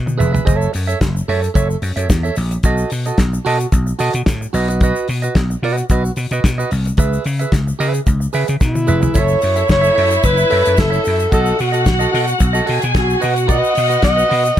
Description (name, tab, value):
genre	disco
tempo	111 BPM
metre	4/4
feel	straight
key	F# dorian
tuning	A4 = 440 Hz
part	vintage slap bass	bass	0.0-14.6 s	E#1 to C#3	-18 LUFS	left 1 dB	none
part	clean electric guitar	accompaniment	0.1-14.6 s	F#4 to E5	-21 LUFS	right 5 dB	harmonic tremolo
part	damped 70s drum kit	drums	0.1-14.6 s	hi-hat, kick drum, snare drum, toms	-18 LUFS	equal	none
part	tube shaker	percussion	0.1-14.6 s	none	-35 LUFS	left 5 dB	none
part	breathy alto saxophone	melody	8.6-14.6 s	E4 to D#5	-17 LUFS	equal	none
part	warm studio string section	second line	9.2-14.6 s	E4 to G#5	-20 LUFS	equal	none
room	little or no reverb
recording	none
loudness	-13 LUFS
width	side -11 dB against mid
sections	0.0-9.1 A section; 9.1-14.6 B section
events	drum fill 0.0-0.5, 8.6-9.1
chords	0.5 F#m7; 2.6 B7; 4.5 B; 7.0 C#m7; 9.1 F#m7; 11.3 B7; 13.2 B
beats	| 0.47 1.02 1.56 2.10 | 2.64 3.18 3.73 4.27 | 4.81 5.35 5.89 6.44 | 6.98 7.52 8.06 8.61 | 9.15 9.69 10.23 10.78 | 11.32 11.86 12.40 12.95 | 13.49 14.03 14.57